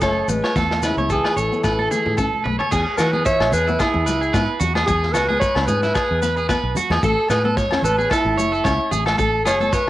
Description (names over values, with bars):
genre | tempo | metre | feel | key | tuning
highlife guitar band | 111 BPM | 4/4 | swing 55% on 16ths | E major | A4 = 435 Hz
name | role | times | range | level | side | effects
growling alto saxophone | melody | 0.0-9.9 s | E4 to C#5 | -22 LUFS | equal | analog delay
breathy trombone | second line | 0.0-2.5 s | C#3 to A3 | -30 LUFS | left 3 dB | none
nylon-string guitar | accompaniment | 0.0-9.8 s | G#3 to E4 | -29 LUFS | left 4 dB | none
electric guitar at the edge of break-up | arpeggios | 0.0-9.9 s | E4 to E5 | -22 LUFS | right 4 dB | analog delay
fingered electric bass | bass | 0.0-9.7 s | F#1 to E3 | -24 LUFS | equal | none
vintage drum kit | drums | 0.0-9.9 s | crash cymbal, kick drum, snare drum, toms | -25 LUFS | equal | cassette tape
agogo bells | percussion | 0.0-9.6 s | none | -28 LUFS | left 5 dB | none
maracas | percussion | 0.0-9.9 s | none | -35 LUFS | left 7 dB | none
congas | percussion | 0.3-9.7 s | none | -31 LUFS | right 1 dB | none
room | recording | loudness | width
moderate spring reverb, RT60 1.6 s, small room ambience | home recording on cassette | -17 LUFS | side -15 dB against mid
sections
0.0-2.7 A section; 2.7-9.9 B section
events
drum fill 1.6-2.7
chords
0.0 A; 2.7 E; 7.0 A